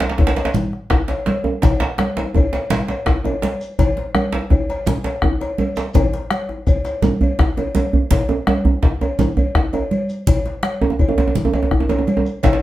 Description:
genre	west african traditional, West African drum ensemble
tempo	111 BPM (dotted quarters)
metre	12/8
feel	straight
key	none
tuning	none
part	djembe	percussion	0.0-12.6 s	none	-22 LUFS	left 2 dB	none
part	djembe	percussion	0.0-12.6 s	none	-20 LUFS	right 2 dB	none
part	bombo	percussion	0.2-12.6 s	none	-18 LUFS	left 1 dB	none
part	cowbell	percussion	0.2-12.6 s	none	-26 LUFS	left 2 dB	none
part	congas	percussion	0.4-12.6 s	none	-23 LUFS	right 2 dB	none
part	shekere	percussion	0.5-12.6 s	none	-26 LUFS	left 2 dB	none
room	wet studio reverb, RT60 0.6 s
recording	heard from further back in the room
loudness	-16 LUFS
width	side -15 dB against mid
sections	0.0-12.6 A section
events	none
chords	none

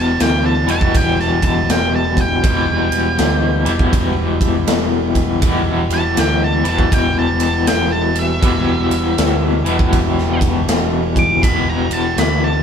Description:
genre	blues rock power trio and southern rock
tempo	80 BPM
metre	4/4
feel	swing 64% on 8ths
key	E minor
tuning	A4 = 445 Hz
part	octave-fuzz lead guitar	melody	0.0-12.6 s	E5 to D6	-21 LUFS	right 1 dB	distortion
part	bright tonewheel organ	sustained chords	0.0-12.6 s	G3 to G#4	-29 LUFS	right 4 dB	none
part	raw garage guitar	riff	0.0-12.6 s	E2 to E3	-18 LUFS	left 2 dB	overdrive, tremolo
part	overdriven picked electric bass	bass	0.0-12.6 s	E1 to D2	-21 LUFS	equal	none
part	big rock drum kit	drums	0.2-12.4 s	kick drum, ride cymbal, snare drum	-18 LUFS	equal	none
room	moderate studio reverb, RT60 0.7 s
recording	band playing live in one room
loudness	-13 LUFS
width	side -7 dB against mid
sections	0.0-12.6 A section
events	lead electric guitar solo 0.0-12.6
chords	0.0 Em

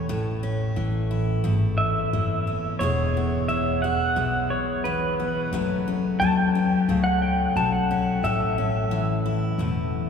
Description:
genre	honky-tonk and classic country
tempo	88 BPM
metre	4/4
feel	straight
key	unclear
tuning	A4 = 440 Hz
part	pedal steel guitar	melody	0.0-9.6 s	B4 to A5	-26 LUFS	right 1 dB	none
part	picked steel-string acoustic guitar	accompaniment	0.0-10.1 s	E2 to G#4	-26 LUFS	left 3 dB	none
part	upright bass	bass	0.1-10.1 s	E1 to D#2	-27 LUFS	equal	none
room	wet cathedral reverb, RT60 5.5 s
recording	recorded in a church or concert hall, studio ambience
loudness	-21 LUFS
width	side -6 dB against mid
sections	0.0-10.1 A section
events	pedal steel guitar solo 0.0-10.1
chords	0.0 A; 2.8 E; 5.5 F#m; 8.2 A

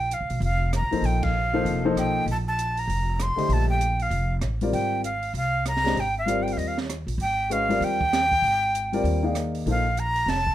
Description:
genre	modal jazz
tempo	195 BPM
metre	4/4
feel	swing 62% on 8ths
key	Bb mixolydian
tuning	A4 = 440 Hz
part	breathy bright jazz flute	melody	0.0-10.5 s	Eb5 to C6	-25 LUFS	right 1 dB	none
part	upright bass	bass	0.0-10.5 s	F1 to Eb2	-27 LUFS	equal	none
part	compact cocktail drum kit	drums	0.1-10.5 s	hi-hat, kick drum, ride cymbal, rim click, snare drum	-34 LUFS	right 3 dB	none
part	warm baby grand piano	accompaniment	0.9-9.8 s	D3 to F5	-26 LUFS	left 3 dB	none
room	light reverb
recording	none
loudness	-22 LUFS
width	side -13 dB against mid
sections	0.0-10.5 A section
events	band accent 1.2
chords	0.0 Bbmaj7sus2; 4.7 Abmaj9; 9.7 Bbmaj7sus2

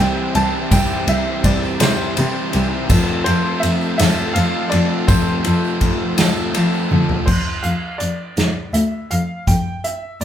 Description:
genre	indie rock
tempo	55 BPM (dotted quarters)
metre	6/8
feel	straight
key	unclear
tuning	A4 = 440 Hz
part	clear upright piano	melody	0.0-10.2 s	C5 to A5	-24 LUFS	equal	none
part	string machine, violas	sustained chords	0.0-7.2 s	F4 to D6	-33 LUFS	equal	none
part	fuzz guitar	riff	0.0-7.3 s	C3 to C5	-23 LUFS	right 4 dB	distortion
part	overdriven electric guitar	riff	0.0-7.3 s	F3 to A4	-24 LUFS	left 8 dB	none
part	dark cello	bass	0.0-10.2 s	C2 to F3	-20 LUFS	equal	none
part	unplugged drum kit	drums	0.3-10.2 s	crash cymbal, hi-hat, kick drum, ride cymbal, snare drum, toms	-20 LUFS	equal	none
part	tambourine	percussion	0.7-6.8 s	none	-33 LUFS	right 7 dB	none
room	moderate large studio reverb, RT60 1.0 s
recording	band playing live in one room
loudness	-15 LUFS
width	side -10 dB against mid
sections	0.0-7.3 A section; 7.3-10.2 B section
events	drum fill 6.9-7.3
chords	0.0 Cadd9; 2.9 F; 7.3 F5

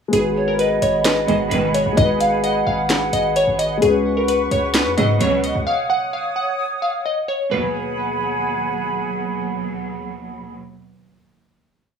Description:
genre	hip hop, trap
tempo	130 BPM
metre	4/4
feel	half-time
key	G# minor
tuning	A4 = 440 Hz
part	glassy wavetable pluck	melody	0.1-8.9 s	G#4 to F#5	-20 LUFS	left 2 dB	chorus, low-pass filter
part	dark concert grand piano	accompaniment	0.1-5.7 s	G#3 to B4	-24 LUFS	left 4 dB	low-pass filter
part	bright large flute ensemble	sustained chords	0.1-10.5 s	G#4 to D#6	-25 LUFS	right 1 dB	none
part	hard-hitting 808-style bass	bass	0.1-5.7 s	G#1 to G#2	-26 LUFS	equal	none
part	trap drum kit	drums	0.1-5.5 s	handclaps, hi-hat, kick drum, snare drum	-21 LUFS	equal	none
part	mellow polished pan flute	second line	0.4-3.8 s	C#5 to F#5	-24 LUFS	right 4 dB	digital delay
part	rich symphonic string section	stabs	1.3-2.0, 5.0-10.5 s	D#2 to F#3	-24 LUFS	right 5 dB	none
room	moderate studio reverb, RT60 0.8 s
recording	studio reverb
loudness	-17 LUFS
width	side -7 dB against mid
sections	0.1-7.5 hook; 7.5-11.2 final chord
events	none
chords	0.1 G#m7; 3.8 C#7sus4; 5.7 D#m7; 7.5 G#m7

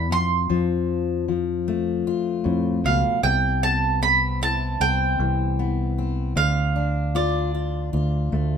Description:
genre	acoustic folk duo or small band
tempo	77 BPM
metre	4/4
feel	straight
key	C major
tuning	A4 = 441 Hz
part	mandolin	melody	0.0-8.3 s	D5 to C6	-23 LUFS	right 5 dB	none
part	fingerpicked steel-string acoustic guitar	accompaniment	0.0-8.6 s	E2 to F4	-26 LUFS	left 8 dB	none
part	fingered electric bass	bass	0.0-8.6 s	C2 to F2	-24 LUFS	equal	none
room	light reverb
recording	minimal, uncompressed stereo recording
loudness	-20 LUFS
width	side -7 dB against mid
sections	0.0-3.2 A section; 3.2-8.6 B section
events	none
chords	0.1 F; 3.2 Cmaj7; 6.4 Dm

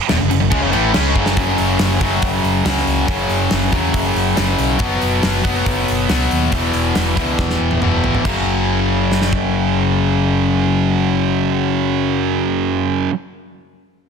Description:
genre	hard rock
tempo	140 BPM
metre	4/4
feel	straight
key	unclear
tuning	A4 = 441 Hz
part	high-gain distorted guitar	riff	0.1-13.1 s	E2 to C#4	-19 LUFS	right 12 dB	distortion
part	overdriven semi-hollow guitar	riff	0.1-13.1 s	E2 to C#4	-19 LUFS	left 12 dB	none
part	picked electric bass	bass	0.1-13.1 s	E1 to E2	-21 LUFS	equal	none
part	gated 80s drum kit	drums	0.1-9.4 s	crash cymbal, hi-hat, kick drum, snare drum, toms	-21 LUFS	equal	none
room	light reverb, studio ambience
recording	dense, heavily limited modern master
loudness	-14 LUFS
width	side -6 dB against mid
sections	0.0-1.4 A section; 1.4-8.2 B section; 8.2-11.7 C section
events	drum fill 1.2, 7.4-8.2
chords	0.0 F#5; 4.8 B5/F#; 6.5 E5; 8.2 F#5

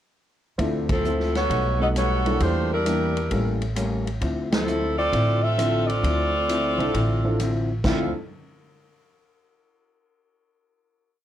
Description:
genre	jazz, big band swing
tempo	133 BPM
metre	4/4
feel	swing 67% on 8ths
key	D minor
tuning	A4 = 440 Hz
part	vintage hollow-body jazz guitar	accompaniment	0.6-8.1 s	A2 to G4	-29 LUFS	left 3 dB	none
part	warm baby grand piano	accompaniment	0.6-8.1 s	F3 to E5	-28 LUFS	right 1 dB	none
part	upright bass	bass	0.6-8.1 s	A1 to E2	-26 LUFS	equal	none
part	swinging big-band drum kit	drums	0.6-8.0 s	crash cymbal, hi-hat, kick drum, ride cymbal, snare drum	-30 LUFS	equal	none
part	bright saxophone section	melody	0.9-8.1 s	F3 to F5	-24 LUFS	equal	none
room	moderate club reverb, RT60 0.5 s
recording	worn, warbling old tape, cassette tape, warbly pitch drift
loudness	-21 LUFS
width	side -11 dB against mid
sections	0.6-7.8 A section; 7.8-9.6 final chord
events	band accent 0.8, 4.4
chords	0.6 Dm9; 1.5 B7b13; 2.4 Em7b5; 3.3 A7b9; 4.2 Dm9

